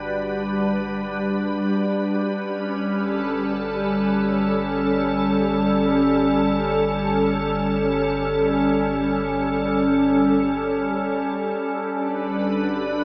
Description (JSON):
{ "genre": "ambient", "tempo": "free time", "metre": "none", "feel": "none", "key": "unclear", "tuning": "A4 = 441 Hz", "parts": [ { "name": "soft additive organ-like pad", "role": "sustained chords", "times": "0.0-13.0 s", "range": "G3 to F#5", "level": "-22 LUFS", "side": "equal", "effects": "ensemble chorus, built-in reverb, shimmer reverb" }, { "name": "round analog bass", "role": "bass", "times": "0.0-13.0 s", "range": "G1", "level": "-37 LUFS", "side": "equal", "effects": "none" }, { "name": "organ-like drone", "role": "drone", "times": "0.0-13.0 s", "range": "G3 to F#4", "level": "-34 LUFS", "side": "equal", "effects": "none" }, { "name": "warm flugelhorn", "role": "melody", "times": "11.6-13.0 s", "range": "F#4 to B4", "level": "-44 LUFS", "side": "equal", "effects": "none" }, { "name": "mellow electric guitar", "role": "arpeggios", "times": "12.4-13.0 s", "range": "D4 to F#4", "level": "-41 LUFS", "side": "equal", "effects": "none" } ], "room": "wet plate reverb, RT60 3.1 s", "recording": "dreamy mix soaked in reverb, small room ambience", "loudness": "-22 LUFS", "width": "mono", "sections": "0.0-11.6 A section; 11.6-13.0 B section", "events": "fade-in on analog synth bass 0.0-11.6", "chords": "0.0 Gmaj7; 2.1 F#m/G; 11.6 Gmaj7" }